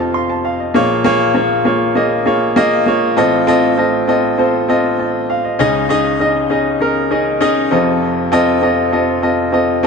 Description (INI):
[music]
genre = pop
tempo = 99 BPM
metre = 4/4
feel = straight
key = Bb minor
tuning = A4 = 438 Hz
[part]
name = clear baby grand piano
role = solo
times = 0.0-9.9 s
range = F1 to C6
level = -12 LUFS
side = equal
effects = digital delay
[sound]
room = moderate lush hall reverb, RT60 2.8 s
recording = dark, warm production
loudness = -12 LUFS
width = side -5 dB against mid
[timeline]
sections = 0.8-9.9 A section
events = none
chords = 0.0 F7; 0.8 Bbm7; 3.2 F7/A; 5.6 Dbsus2; 7.7 F7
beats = 0.14 | 0.75 1.36 1.96 2.57 | 3.17 3.78 4.39 4.99 | 5.60 6.21 6.81 7.42 | 8.02 8.63 9.23 9.84